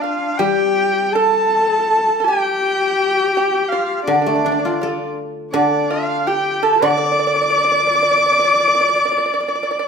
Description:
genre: chinese traditional, Chinese chamber ensemble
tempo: 81 BPM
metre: 4/4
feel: rubato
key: D yu mode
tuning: A4 = 441 Hz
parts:
  - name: rich erhu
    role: melody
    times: 0.0-9.9 s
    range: D5 to D6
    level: -18 LUFS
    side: equal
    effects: none
  - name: dark horsehead fiddle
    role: second line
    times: 0.0-9.9 s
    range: D4 to D5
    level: -20 LUFS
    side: left 4 dB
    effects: none
  - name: pipa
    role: second line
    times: 0.0-9.9 s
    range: D4 to D5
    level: -21 LUFS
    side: right 8 dB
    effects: none
  - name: guzheng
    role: accompaniment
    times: 0.4-9.0 s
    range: D3 to A4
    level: -21 LUFS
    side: left 3 dB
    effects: none
room: moderate recital hall reverb, RT60 1.3 s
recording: minimal, uncompressed stereo recording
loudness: -14 LUFS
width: side -6 dB against mid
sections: 0.0-9.9 A section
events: none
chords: none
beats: 0.40 1.16 1.90 | 2.64 3.36 4.08 4.81 | 5.54 6.26 7.00 7.75 | 8.49 9.23

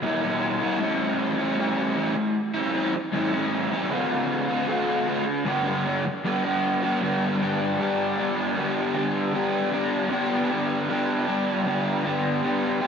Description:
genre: rock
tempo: 77 BPM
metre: 4/4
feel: straight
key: G major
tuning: A4 = 441 Hz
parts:
  - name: raw garage guitar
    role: solo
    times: 0.0-12.9 s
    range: E2 to G4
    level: -22 LUFS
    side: equal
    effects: overdrive, lush chorus, ping-pong delay
room: wet lush hall reverb, RT60 2.5 s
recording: dreamy mix soaked in reverb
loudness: -22 LUFS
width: side -6 dB against mid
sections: 0.0-7.0 A section; 7.0-12.9 B section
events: none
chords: 0.0 Em; 0.8 A7; 3.9 D7; 5.5 G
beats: 0.02 | 0.79 1.57 2.35 3.13 | 3.90 4.68 5.46 6.23 | 7.01 7.78 8.56 9.33 | 10.11 10.88 11.66 12.43

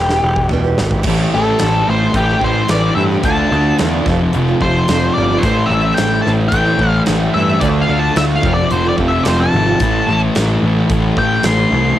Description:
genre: quiet-loud alternative rock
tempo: 110 BPM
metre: 4/4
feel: straight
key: A minor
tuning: A4 = 438 Hz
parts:
  - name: octave-fuzz lead guitar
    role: melody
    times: 0.0-12.0 s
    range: G4 to C6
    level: -18 LUFS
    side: left 2 dB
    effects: distortion, tape echo
  - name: picked steel-string acoustic guitar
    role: arpeggios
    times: 0.0-9.8 s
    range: E2 to G4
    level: -22 LUFS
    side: right 5 dB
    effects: cassette tape
  - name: fuzz picked electric bass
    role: bass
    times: 0.0-11.9 s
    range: E1 to G2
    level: -17 LUFS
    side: equal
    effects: overdrive
  - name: huge arena drum kit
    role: drums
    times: 0.1-11.6 s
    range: crash cymbal, hi-hat, kick drum, snare drum, toms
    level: -22 LUFS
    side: equal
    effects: cassette tape
  - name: thick fuzz guitar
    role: riff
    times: 1.1-12.0 s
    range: F2 to D4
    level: -17 LUFS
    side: left 1 dB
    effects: distortion, cassette tape
room: little or no reverb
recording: home recording on cassette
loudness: -12 LUFS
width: side -12 dB against mid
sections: 0.0-1.1 A section; 1.1-12.0 B section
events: drum fill 0.0-1.1; half time 0.0-1.1; lead electric guitar solo 1.1-12.0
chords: 0.0 Em; 1.1 Am7; 3.2 Dm; 4.1 F; 5.4 Am7; 7.6 Dm; 8.4 F; 9.8 Am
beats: 0.51 | 1.06 1.60 2.15 2.70 | 3.25 3.79 4.34 4.89 | 5.44 5.99 6.53 7.08 | 7.63 8.18 8.72 9.27 | 9.82 10.37 10.91 11.46

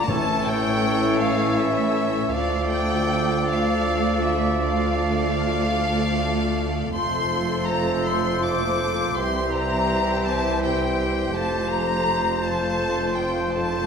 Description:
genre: classical, slow romantic movement for symphony orchestra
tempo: 49-56 BPM (dotted quarters)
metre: 12/8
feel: rubato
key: D minor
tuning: A4 = 437 Hz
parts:
  - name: rich chamber violin section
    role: melody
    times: 0.0-13.9 s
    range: E5 to D6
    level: -28 LUFS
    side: left 2 dB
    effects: none
  - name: bright large flute ensemble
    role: second line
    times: 0.0-13.9 s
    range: E5 to D6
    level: -30 LUFS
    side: left 3 dB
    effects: none
  - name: rich studio violin section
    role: second line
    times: 0.0-13.9 s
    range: G4 to D5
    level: -33 LUFS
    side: left 2 dB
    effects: none
  - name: warm clarinet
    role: second line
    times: 0.0-13.9 s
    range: F4 to A4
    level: -31 LUFS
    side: left 1 dB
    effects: none
  - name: warm oboe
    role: second line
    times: 0.0-13.9 s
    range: C5 to D5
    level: -30 LUFS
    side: right 1 dB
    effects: none
  - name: mellow bassoon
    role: accompaniment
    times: 0.0-13.9 s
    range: D3 to F3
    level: -30 LUFS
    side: right 4 dB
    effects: none
  - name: warm studio viola section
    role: accompaniment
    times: 0.0-13.9 s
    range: A3 to F4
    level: -30 LUFS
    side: right 2 dB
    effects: none
  - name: mellow French horn section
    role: sustained chords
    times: 0.0-13.9 s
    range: F3 to F4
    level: -29 LUFS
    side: left 2 dB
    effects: none
  - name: rich chamber cello section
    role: bass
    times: 0.0-13.9 s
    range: C2 to A2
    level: -30 LUFS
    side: right 1 dB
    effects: none
  - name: warm chamber double bass section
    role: bass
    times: 0.0-13.9 s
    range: F1 to D2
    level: -30 LUFS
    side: right 2 dB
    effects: none
  - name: timpani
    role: percussion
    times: 0.1-1.2 s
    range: A2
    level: -32 LUFS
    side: left 2 dB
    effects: none
room: wet scoring stage reverb, RT60 1.6 s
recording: minimal, uncompressed stereo recording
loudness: -20 LUFS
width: side -6 dB against mid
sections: 0.0-13.9 A section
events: none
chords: 0.1 A7; 2.3 Dm; 6.9 F; 9.2 C7; 11.3 F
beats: 0.08 1.20 | 2.33 3.46 4.62 5.74 | 6.93 8.06 9.17 10.26 | 11.34 12.42 13.51

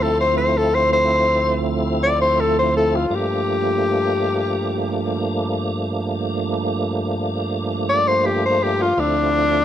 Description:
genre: blues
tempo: 82 BPM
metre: 4/4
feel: straight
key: unclear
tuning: A4 = 440 Hz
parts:
  - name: breathy tenor saxophone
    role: melody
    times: 0.0-9.6 s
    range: D4 to D5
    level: -18 LUFS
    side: left 2 dB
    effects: none
  - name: tonewheel organ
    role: accompaniment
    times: 0.0-9.6 s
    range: D2 to E4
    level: -21 LUFS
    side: right 2 dB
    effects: slow rotary speaker, overdrive, chorus vibrato
room: light reverb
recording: none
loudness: -17 LUFS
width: side -10 dB against mid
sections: 0.0-9.6 A section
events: none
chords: 0.0 Dm7; 3.1 Gm7; 9.0 Dm7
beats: | 0.17 0.90 1.64 2.37 | 3.10 3.84 4.57 5.31 | 6.04 6.77 7.51 8.24 | 8.97

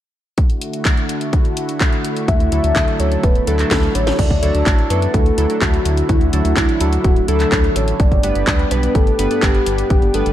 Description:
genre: italo disco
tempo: 126 BPM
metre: 4/4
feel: straight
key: D major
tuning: A4 = 439 Hz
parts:
  - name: lush unison pad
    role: sustained chords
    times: 0.4-10.3 s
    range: D3 to G4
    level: -23 LUFS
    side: equal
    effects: chorus
  - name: electronic kick drum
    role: drums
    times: 0.4-10.0 s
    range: none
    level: -16 LUFS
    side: equal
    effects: none
  - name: house drum kit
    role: drums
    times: 0.4-10.3 s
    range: crash cymbal, handclaps, hi-hat, snare drum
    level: -24 LUFS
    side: equal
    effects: none
  - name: soft octave-layered synth lead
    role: melody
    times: 2.3-10.3 s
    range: E4 to E5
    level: -20 LUFS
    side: left 2 dB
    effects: chorus, digital delay
  - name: round analog bass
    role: bass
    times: 2.3-10.3 s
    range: D1 to F#2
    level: -19 LUFS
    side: equal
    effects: none
  - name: chorused polysynth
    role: stabs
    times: 2.5-10.3 s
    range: G2 to B4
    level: -24 LUFS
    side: right 3 dB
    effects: vintage 12-bit sampler grit
room: light reverb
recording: dark, warm production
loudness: -14 LUFS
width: side -12 dB against mid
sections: 0.4-4.2 A section; 4.2-10.3 B section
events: drum fill 3.7-4.2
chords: 0.4 Dadd9; 8.0 G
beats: | 0.38 0.85 1.33 1.81 | 2.28 2.76 3.23 3.71 | 4.19 4.66 5.14 5.62 | 6.09 6.57 7.04 7.52 | 8.00 8.47 8.95 9.43 | 9.90

